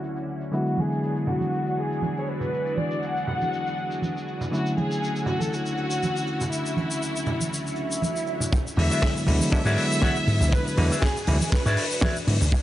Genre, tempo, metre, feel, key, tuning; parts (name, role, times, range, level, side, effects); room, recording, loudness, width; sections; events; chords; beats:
nu-disco, nu disco; 120 BPM; 4/4; straight; E mixolydian; A4 = 438 Hz
warm chamber violin section; melody; 0.0-12.3 s; E4 to F#5; -30 LUFS; left 1 dB; tape echo
bell-like tine electric piano; accompaniment; 0.0-12.4 s; D3 to E4; -28 LUFS; equal; sidechain pumping
string machine, full ensemble; sustained chords; 0.0-12.6 s; D3 to C#6; -33 LUFS; equal; ensemble chorus, sidechain pumping
tight funk drum kit; drums; 0.0-12.6 s; hi-hat, shaker, snare drum; -31 LUFS; left 2 dB
cabasa and congas; percussion; 0.5-12.6 s; -31 LUFS; right 2 dB
swell; sound effects; 7.7-8.5 s; -31 LUFS; right 2 dB
electric guitar with an envelope filter; riff; 8.5-12.6 s; F#4 to F#5; -31 LUFS; left 2 dB; lush chorus
kick drum; drums; 8.5-12.6 s; -24 LUFS; equal
slap bass with an envelope filter; bass; 8.8-12.5 s; D2 to G#2; -22 LUFS; equal; sidechain pumping
light reverb, small room reverb; low-pass filter, nothing above 10.5 kHz; -22 LUFS; side -13 dB against mid
0.0-8.5 A section; 8.5-12.6 B section
filter sweep 0.0-8.5; swell 7.7-8.5; drop 8.5-12.6
0.0 Dmaj9; 0.5 E9; 4.5 Dmaj9; 8.5 E9
0.03 | 0.53 1.02 1.52 2.02 | 2.52 3.02 3.52 4.03 | 4.53 5.03 5.53 6.03 | 6.53 7.03 7.53 8.03 | 8.53 9.03 9.53 10.03 | 10.53 11.03 11.53 12.03 | 12.53